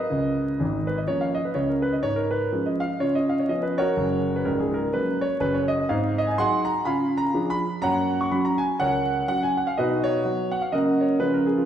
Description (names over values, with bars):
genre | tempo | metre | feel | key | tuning
jazz, stride piano | 124 BPM | 4/4 | swing 58% on 8ths | F# major | A4 = 441 Hz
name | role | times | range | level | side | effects
warm concert grand piano | solo | 0.0-11.7 s | C#1 to C#6 | -21 LUFS | equal | none
room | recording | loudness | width
wet scoring stage reverb, RT60 1.5 s | recorded in a church or concert hall, vinyl crackle | -21 LUFS | side -10 dB against mid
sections
0.0-11.7 A section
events
none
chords
0.1 C#13; 3.0 C#7; 4.0 F#; 5.9 G#7; 6.9 C#; 7.8 F#; 9.8 B; 10.7 F#/C#